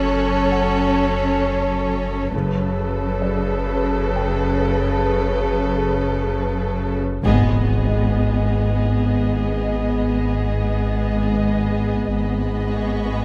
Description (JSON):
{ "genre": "cinematic, suspense film score", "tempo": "99 BPM", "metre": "4/4", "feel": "straight", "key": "G# minor from 7.2 s", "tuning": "A4 = 440 Hz", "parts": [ { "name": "dark symphonic violin section", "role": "melody", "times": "0.0-13.2 s", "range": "B4 to D#5", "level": "-32 LUFS", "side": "equal", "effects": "none" }, { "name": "rich chamber violin section", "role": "second line", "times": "0.0-13.2 s", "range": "G#4 to A4", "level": "-30 LUFS", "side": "equal", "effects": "none" }, { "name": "rich chamber viola section", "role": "accompaniment", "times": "0.0-13.2 s", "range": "C#3 to C#4", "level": "-26 LUFS", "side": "equal", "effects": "none" }, { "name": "rich chamber cello section", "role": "bass", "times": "0.0-13.2 s", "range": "F#2 to G#2", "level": "-26 LUFS", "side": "equal", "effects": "none" }, { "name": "saturated sub bass", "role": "drone", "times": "0.0-13.2 s", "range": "F#1 to G#1", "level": "-29 LUFS", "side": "equal", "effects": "none" }, { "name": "rich chamber violin section", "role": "texture", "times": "0.0-6.9, 12.1-13.2 s", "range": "A5 to F#6", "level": "-40 LUFS", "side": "equal", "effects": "none" }, { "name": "warm grand piano", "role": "texture", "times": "0.0-13.2 s", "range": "D5 to G5", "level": "-38 LUFS", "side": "equal", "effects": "none" }, { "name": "rich chamber double bass section", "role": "bass", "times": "2.3-2.9, 7.2-13.2 s", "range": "F#1 to G#1", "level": "-26 LUFS", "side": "equal", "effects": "none" }, { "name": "impact", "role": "sound effects", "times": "7.2-9.7 s", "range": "none", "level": "-31 LUFS", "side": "equal", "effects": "none" } ], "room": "moderate concert hall reverb, RT60 2.0 s", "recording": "none", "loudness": "-20 LUFS", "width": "mono", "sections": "0.0-7.2 A section; 7.2-13.2 B section", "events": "band accent 7.2-7.9; impact 7.2-9.7", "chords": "0.0 F#m; 7.2 G#m", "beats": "0.53 1.13 1.73 | 2.33 2.93 3.53 4.14 | 4.76 5.39 6.01 6.62 | 7.24 7.85 8.45 9.05 | 9.65 10.26 10.87 11.47 | 12.08 12.69" }